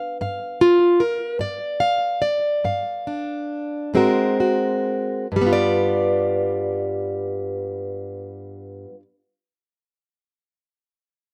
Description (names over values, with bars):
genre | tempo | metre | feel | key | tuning
acoustic country blues, solo or duo | 42-51 BPM (dotted quarters) | 12/8 | straight | G mixolydian | A4 = 441 Hz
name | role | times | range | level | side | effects
fingerpicked plugged-in steel-string acoustic guitar | solo | 0.0-9.0 s | G2 to F5 | -22 LUFS | equal | none
room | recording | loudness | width
little or no reverb | recorded outdoors, with no room sound | -21 LUFS | mono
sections
0.0-5.3 A section; 5.3-11.0 B section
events
slowing down 0.0-5.3; steel-string acoustic guitar solo 0.0-5.3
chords
0.0 G7; 3.9 Ab9; 5.3 G7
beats
| 0.21 1.41 2.64 3.94 | 5.31 6.73 8.15